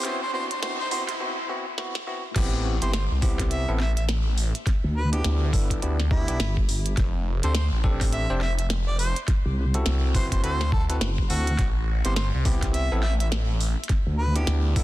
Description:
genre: glitch hop.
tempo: 104 BPM.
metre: 4/4.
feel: swing 60% on 16ths.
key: A minor.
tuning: A4 = 441 Hz.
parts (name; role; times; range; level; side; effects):
bell-like tine electric piano; stabs; 0.0-14.8 s; B3 to C5; -32 LUFS; left 1 dB; sidechain pumping, ping-pong delay.
glitchy drum kit; drums; 0.0-14.8 s; crash cymbal, hi-hat, snare drum; -32 LUFS; equal; soft clipping on snare.
riser; sound effects; 0.0-1.2 s; none; -35 LUFS; equal; none.
warm harmonica; melody; 0.1-14.5 s; E4 to E5; -32 LUFS; right 1 dB; ping-pong delay.
phased detuned saw bass; bass; 2.4-14.8 s; F1 to D2; -24 LUFS; equal; phaser, overdrive.
electronic kick drum; drums; 2.4-14.8 s; none; -24 LUFS; equal; overdrive.
vowel-sweep wobble bass; bass; 4.8-14.5 s; F#1 to D2; -24 LUFS; equal; chorus.
room: little or no reverb.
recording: dense, heavily limited modern master, high-pass filter.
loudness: -22 LUFS.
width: side -16 dB against mid.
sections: 0.0-2.4 A section; 2.4-14.8 B section.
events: build-up 0.0-2.4; riser 0.0-1.2; break 1.2-2.4; drum fill 1.8-2.4; drop 2.4-14.8.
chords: 0.1 Cmaj7#11/B; 2.4 Am7; 4.7 Em7; 7.0 F6; 9.3 D7; 11.6 Am7; 13.9 Em7.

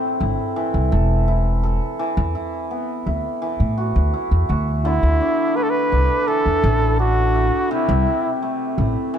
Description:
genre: folktronica.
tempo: 84 BPM.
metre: 4/4.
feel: straight.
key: D mixolydian.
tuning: A4 = 440 Hz.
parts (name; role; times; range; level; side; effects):
hammered dulcimer; arpeggios; 0.0-9.2 s; A2 to A4; -23 LUFS; equal; digital delay.
upright bass; bass; 0.2-8.9 s; E1 to A2; -19 LUFS; equal; none.
breathy flugelhorn; melody; 4.8-8.4 s; E4 to B4; -20 LUFS; equal; digital delay.
room: light reverb, small room ambience.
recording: dark, warm production.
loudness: -17 LUFS.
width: side -9 dB against mid.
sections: 0.0-9.2 A section.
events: none.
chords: 0.0 Am; 2.0 Esus2; 4.9 Dsus2; 7.7 C6.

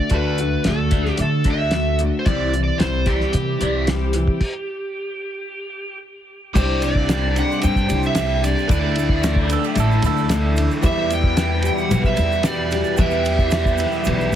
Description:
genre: folk rock and heartland rock.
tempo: 112 BPM.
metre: 4/4.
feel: straight.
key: unclear.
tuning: A4 = 440 Hz.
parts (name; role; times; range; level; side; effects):
overdriven slide guitar; melody; 0.0-14.4 s; G4 to G5; -24 LUFS; right 3 dB; digital delay.
picked steel-string acoustic guitar; accompaniment; 0.0-14.3 s; E2 to G4; -25 LUFS; left 6 dB; none.
overdriven electric guitar; riff; 0.0-14.4 s; E2 to G4; -26 LUFS; right 1 dB; phaser.
upright bass; bass; 0.1-14.4 s; G1 to D3; -22 LUFS; equal; none.
cloth-damped thuddy drum kit; drums; 0.1-14.2 s; crash cymbal, hi-hat, kick drum, ride cymbal, snare drum; -23 LUFS; equal; none.
warm upright piano; accompaniment; 6.6-14.4 s; G4 to E5; -37 LUFS; right 6 dB; none.
hand-pumped harmonium; sustained chords; 6.6-14.4 s; E3 to B4; -33 LUFS; right 1 dB; none.
egg shaker; percussion; 6.6-14.4 s; none; -38 LUFS; right 12 dB; none.
mandolin; second line; 9.5-10.7 s; E4 to A4; -25 LUFS; right 5 dB; none.
room: little or no reverb.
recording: heavily compressed radio sound, multiband compression.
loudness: -17 LUFS.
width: side -10 dB against mid.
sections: 0.0-6.6 A section; 6.6-14.4 B section.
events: stop 4.4-6.6.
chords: 0.0 D; 2.3 C; 6.6 Csus2; 8.7 Dsus2; 10.8 Em.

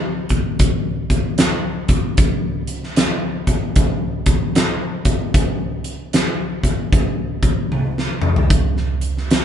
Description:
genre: rock.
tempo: 76 BPM.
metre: 4/4.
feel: swing 64% on 8ths.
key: none.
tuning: none.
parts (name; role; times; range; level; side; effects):
huge arena drum kit; drums; 0.3-9.4 s; hi-hat, kick drum, snare drum, toms; -16 LUFS; equal; none.
room: light reverb.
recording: band playing live in one room, nothing above 11.0 kHz.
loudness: -16 LUFS.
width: side -9 dB against mid.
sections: 0.0-9.4 A section.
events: drum fill 7.7-8.5.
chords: none.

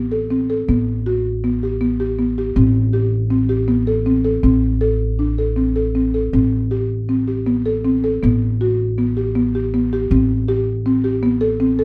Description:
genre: contemporary instrumental, chamber music in an uneven meter.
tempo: 160 BPM.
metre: 5/4.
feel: straight.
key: A dorian.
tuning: A4 = 437 Hz.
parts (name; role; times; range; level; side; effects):
buzzing marimba with soft mallets; arpeggios; 0.0-11.8 s; B3 to A4; -20 LUFS; equal; none.
upright bass; bass; 0.0-11.8 s; A1; -23 LUFS; equal; none.
room: light reverb.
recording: none.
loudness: -18 LUFS.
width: mono.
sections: 0.0-11.8 A section.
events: none.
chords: 0.0 Am; 0.7 Gmaj7/A; 2.6 Am7; 4.4 N.C.; 6.3 Am7; 8.2 Gmaj7/A; 10.1 Am7.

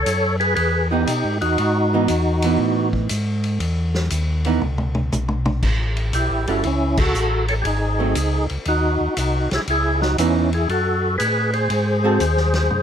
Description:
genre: soul jazz organ trio.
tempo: 119 BPM.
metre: 4/4.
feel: swing 68% on 8ths.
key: C# minor.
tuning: A4 = 440 Hz.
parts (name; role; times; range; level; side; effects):
percussive tonewheel organ; melody; 0.0-2.9, 6.1-12.8 s; C#4 to C#5; -20 LUFS; equal; slow rotary speaker, overdrive, chorus vibrato.
mellow tonewheel organ; bass; 0.0-12.8 s; G1 to B2; -21 LUFS; equal; slow rotary speaker.
vintage drum kit; drums; 0.1-12.8 s; crash cymbal, hi-hat, kick drum, ride cymbal, snare drum, toms; -27 LUFS; left 1 dB; none.
archtop guitar, miked and amplified; accompaniment; 0.9-12.2 s; E3 to A4; -21 LUFS; right 6 dB; none.
room: little or no reverb.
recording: none.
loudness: -17 LUFS.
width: side -8 dB against mid.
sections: 0.0-12.8 A section.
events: drum fill 4.6-5.6; band accent 6.9.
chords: 0.0 C#m9; 5.6 A7; 7.6 G#7; 9.7 C#m9; 10.7 F#madd9; 11.7 G#7b9.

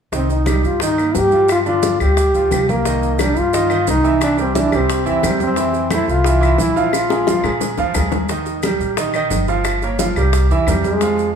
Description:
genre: latin, salsa.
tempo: 176 BPM.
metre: 4/4.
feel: straight.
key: C minor.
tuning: A4 = 440 Hz.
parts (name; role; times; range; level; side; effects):
clear baby grand piano; accompaniment; 0.1-11.3 s; D3 to F5; -20 LUFS; right 5 dB; none.
upright bass; bass; 0.1-11.4 s; G1 to Bb2; -21 LUFS; equal; none.
bongos; percussion; 0.1-11.3 s; none; -25 LUFS; left 5 dB; none.
congas; percussion; 0.1-11.4 s; none; -27 LUFS; left 1 dB; none.
maracas; percussion; 0.1-11.4 s; none; -31 LUFS; right 6 dB; none.
clear trombone; melody; 0.2-7.6, 10.9-11.3 s; Ab3 to G4; -17 LUFS; left 1 dB; none.
claves; percussion; 0.5-10.8 s; none; -29 LUFS; left 2 dB; none.
room: moderate large studio reverb, RT60 1.2 s.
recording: band playing live in one room.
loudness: -14 LUFS.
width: side -7 dB against mid.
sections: 0.1-2.9 A section; 2.9-11.4 B section.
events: drum fill 6.9-8.3.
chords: 0.1 Cm7; 1.5 G5; 2.9 Cm7; 4.2 C7; 5.6 Fmaj7; 6.9 Bb5; 8.3 Ebadd9; 9.7 Gm7b5; 10.3 C7.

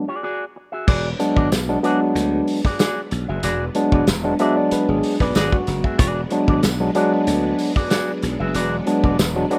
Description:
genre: funk.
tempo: 94 BPM.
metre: 4/4.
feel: straight.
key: E mixolydian.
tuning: A4 = 438 Hz.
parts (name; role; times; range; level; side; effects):
barky tine electric piano; stabs; 0.0-9.6 s; F#3 to E5; -22 LUFS; equal; none.
electric guitar with an envelope filter; accompaniment; 0.1-9.6 s; F#4 to E5; -28 LUFS; equal; harmonic tremolo.
string machine, violins; sustained chords; 0.9-9.6 s; F#3 to D4; -31 LUFS; equal; ensemble chorus.
slap bass; bass; 0.9-9.4 s; E1 to D2; -26 LUFS; equal; none.
warm soul drum kit; drums; 0.9-9.6 s; crash cymbal, hi-hat, kick drum, snare drum; -23 LUFS; equal; none.
tambourine; percussion; 1.5-9.3 s; none; -36 LUFS; equal; none.
room: small room reverb.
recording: rough home demo mix.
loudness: -20 LUFS.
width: mono.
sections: 0.9-9.6 A section.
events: break 0.0-0.9; tine electric piano fill 4.1-6.0.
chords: 0.0 E9.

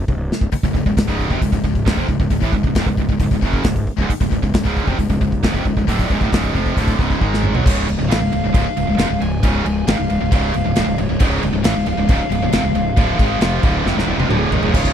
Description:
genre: heavy metal.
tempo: 135 BPM.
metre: 4/4.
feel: straight.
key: unclear.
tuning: A4 = 437 Hz.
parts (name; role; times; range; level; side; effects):
fuzz fingered electric bass; bass; 0.0-14.9 s; C#1 to B1; -22 LUFS; equal; overdrive.
modern studio drum kit; drums; 0.1-14.9 s; china cymbal, crash cymbal, hi-hat, kick drum, snare drum, toms; -19 LUFS; equal; none.
distorted electric guitar; riff; 0.5-14.9 s; C#2 to G#3; -22 LUFS; right 13 dB; overdrive.
high-gain distorted guitar; riff; 0.5-14.9 s; C#2 to E#4; -23 LUFS; left 12 dB; distortion.
lead guitar through a small cranked amp; melody; 7.4-14.9 s; C#5 to G#5; -25 LUFS; left 1 dB; overdrive, tape echo.
heavy high-gain guitar; riff; 11.2-14.9 s; C#2 to G#3; -25 LUFS; equal; distortion.
high-gain lead guitar; second line; 14.3-14.9 s; G#4 to C#5; -25 LUFS; right 3 dB; distortion.
room: small room ambience.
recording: none.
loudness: -15 LUFS.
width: side -9 dB against mid.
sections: 0.0-7.7 A section; 7.7-14.7 B section.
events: drum fill 0.1-0.5, 7.2-7.7, 13.9-14.7.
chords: 0.0 C#.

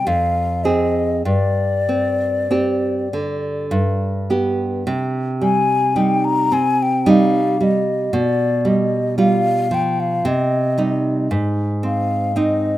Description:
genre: romantic duo for flute and classical guitar.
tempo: 48-58 BPM.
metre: 3/4.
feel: rubato.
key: C minor.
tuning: A4 = 438 Hz.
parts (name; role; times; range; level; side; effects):
mellow hollow concert flute; melody; 0.0-12.8 s; D5 to Bb5; -20 LUFS; left 3 dB; none.
nylon-string guitar; accompaniment; 0.0-12.8 s; F2 to Ab4; -18 LUFS; right 2 dB; none.
room: light reverb, small room ambience.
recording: rough home demo mix.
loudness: -16 LUFS.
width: side -14 dB against mid.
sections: 0.0-4.9 A section; 4.9-12.8 B section.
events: none.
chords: 0.1 Fm; 1.3 Gsus4; 3.7 G; 4.9 Cm; 8.1 G7/B; 10.2 Cm; 11.3 Ab.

